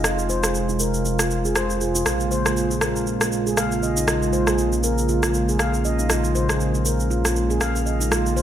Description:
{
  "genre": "afro house",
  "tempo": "119 BPM",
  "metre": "4/4",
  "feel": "swing 57% on 16ths",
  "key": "unclear",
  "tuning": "A4 = 440 Hz",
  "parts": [
    { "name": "warm analog pad", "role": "sustained chords", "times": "0.0-8.4 s", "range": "C3 to F4", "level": "-24 LUFS", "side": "right 2 dB", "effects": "chorus" },
    { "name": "handpan", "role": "arpeggios", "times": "0.0-8.4 s", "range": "Eb4 to F5", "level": "-25 LUFS", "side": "left 1 dB", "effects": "low-pass filter, dub echo" },
    { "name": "smooth synth bass", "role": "bass", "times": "0.0-8.4 s", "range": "F1 to Bb1", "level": "-25 LUFS", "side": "equal", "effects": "none" },
    { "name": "electronic rim click and cabasa", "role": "drums", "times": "0.0-8.4 s", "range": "none", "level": "-25 LUFS", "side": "equal", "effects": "studio reverb" }
  ],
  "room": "moderate lush hall reverb, RT60 2.2 s",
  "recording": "none",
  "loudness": "-19 LUFS",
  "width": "side -10 dB against mid",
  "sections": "0.0-8.4 A section",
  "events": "filter sweep on handpan 0.0-8.4",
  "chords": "0.0 Fm; 2.1 Bbm7",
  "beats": "| 0.04 0.55 1.05 1.56 | 2.06 2.57 3.07 3.58 | 4.08 4.58 5.09 5.59 | 6.10 6.60 7.10 7.61 | 8.11"
}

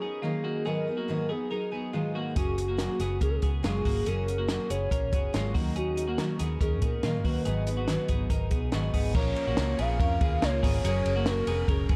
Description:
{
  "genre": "jangly indie pop",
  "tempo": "141 BPM",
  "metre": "4/4",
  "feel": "straight",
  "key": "F# major",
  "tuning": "A4 = 440 Hz",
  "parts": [
    { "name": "warbly nostalgic lead", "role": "melody", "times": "0.0-12.0 s", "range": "F#4 to E#5", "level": "-35 LUFS", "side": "equal", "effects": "chorus, tremolo" },
    { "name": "picked steel-string acoustic guitar", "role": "accompaniment", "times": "0.0-12.0 s", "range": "G#2 to A#4", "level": "-37 LUFS", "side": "equal", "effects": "none" },
    { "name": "twelve-string electric guitar", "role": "arpeggios", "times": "0.0-12.0 s", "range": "G#3 to A#4", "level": "-38 LUFS", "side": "equal", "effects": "none" },
    { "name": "vintage muted fingered electric bass", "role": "bass", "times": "2.4-12.0 s", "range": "E#1 to A#2", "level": "-33 LUFS", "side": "equal", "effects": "none" },
    { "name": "compact cocktail drum kit", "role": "drums", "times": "2.4-12.0 s", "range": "crash cymbal, hi-hat, kick drum, ride cymbal, snare drum", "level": "-32 LUFS", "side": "equal", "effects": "none" }
  ],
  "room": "light reverb, small room ambience",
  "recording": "dark, warm production",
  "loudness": "-28 LUFS",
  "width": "mono",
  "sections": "0.0-9.2 A section; 9.2-12.0 B section",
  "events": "none",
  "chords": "0.0 D#m7; 0.7 G#m7; 2.4 F#add9; 5.5 D#m7; 7.5 G#m7; 9.2 A#m; 10.8 F#add9",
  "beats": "0.23 | 0.66 1.08 1.51 1.94 | 2.36 2.79 3.21 3.64 | 4.06 4.49 4.91 5.34 | 5.76 6.19 6.61 7.03 | 7.46 7.88 8.30 8.73 | 9.15 9.57 10.00 10.42 | 10.84 11.26 11.68"
}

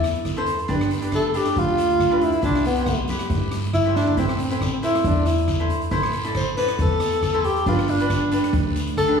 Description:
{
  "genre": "calypso",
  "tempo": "138 BPM",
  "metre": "4/4",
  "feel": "swing 54% on 16ths",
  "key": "A minor",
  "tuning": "A4 = 440 Hz",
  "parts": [
    { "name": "breathy tenor saxophone", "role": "melody", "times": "0.0-9.2 s", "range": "B3 to C5", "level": "-22 LUFS", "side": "equal", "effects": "none" },
    { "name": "cavaquinho", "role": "accompaniment", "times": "0.0-9.2 s", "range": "D4 to D5", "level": "-27 LUFS", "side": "equal", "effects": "none" },
    { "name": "upright bass", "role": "bass", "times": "0.0-9.2 s", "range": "G1 to G2", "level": "-26 LUFS", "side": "equal", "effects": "none" },
    { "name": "street-band drum kit", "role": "drums", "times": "0.0-9.1 s", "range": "hi-hat, kick drum, rim click, snare drum, toms", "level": "-27 LUFS", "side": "equal", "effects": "none" },
    { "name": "guiro", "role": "percussion", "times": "0.0-9.1 s", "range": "none", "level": "-37 LUFS", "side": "left 2 dB", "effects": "none" }
  ],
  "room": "wet recital hall reverb, RT60 1.6 s",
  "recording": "heard from further back in the room, small room ambience",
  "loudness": "-19 LUFS",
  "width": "side -6 dB against mid",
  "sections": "0.0-9.2 A section",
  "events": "tenor saxophone solo 0.0-9.2; drum fill 4.0",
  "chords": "0.0 Am; 0.7 G7; 2.4 C; 4.2 Am; 7.7 G",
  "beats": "0.26 | 0.69 1.13 1.57 2.00 | 2.44 2.88 3.31 3.75 | 4.18 4.62 5.05 5.49 | 5.93 6.36 6.80 7.24 | 7.67 8.11 8.54 8.98"
}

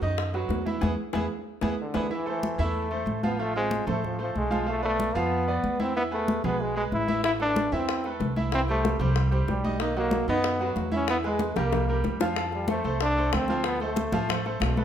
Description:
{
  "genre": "latin, salsa",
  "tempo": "187 BPM",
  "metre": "4/4",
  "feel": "straight",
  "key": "A harmonic minor",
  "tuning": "A4 = 440 Hz",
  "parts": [
    { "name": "bright grand piano", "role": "accompaniment", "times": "0.0-14.8 s", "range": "D#3 to F5", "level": "-31 LUFS", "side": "right 2 dB", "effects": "none" },
    { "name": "upright bass", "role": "bass", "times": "0.0-14.8 s", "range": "A1 to F#2", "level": "-30 LUFS", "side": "equal", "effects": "none" },
    { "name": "bongos", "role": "percussion", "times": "0.2-2.0, 7.2-14.8 s", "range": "none", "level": "-34 LUFS", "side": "left 6 dB", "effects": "none" },
    { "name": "congas", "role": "percussion", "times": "0.2-14.8 s", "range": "none", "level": "-32 LUFS", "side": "equal", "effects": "none" },
    { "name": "bright trombone", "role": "melody", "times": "1.8-14.4 s", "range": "D3 to E4", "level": "-28 LUFS", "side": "equal", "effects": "none" }
  ],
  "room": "moderate large studio reverb, RT60 1.2 s",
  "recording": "minimal, uncompressed stereo recording",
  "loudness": "-24 LUFS",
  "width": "side -9 dB against mid",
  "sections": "0.0-2.1 A section; 2.1-12.4 A section; 12.4-14.8 B section",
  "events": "band accent 0.8-2.1; drum fill 1.5-2.1, 11.6-12.4",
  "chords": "0.0 B; 0.8 E; 2.1 Am; 3.4 F/A; 4.7 Bdim; 6.0 E; 7.2 Amadd9; 8.5 C; 9.8 B; 11.1 E; 11.7 C5; 12.4 F; 13.6 Dm7",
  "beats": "0.18 0.50 | 0.82 1.14 1.47 1.79 | 2.11 2.43 2.75 3.07 | 3.39 3.71 4.03 4.36 | 4.68 5.00 5.32 5.64 | 5.96 6.28 6.60 6.92 | 7.24 7.56 7.88 8.20 | 8.52 8.84 9.16 9.48 | 9.80 10.13 10.45 10.77 | 11.09 11.41 11.73 12.05 | 12.37 12.69 13.01 13.33 | 13.65 13.97 14.29 14.61"
}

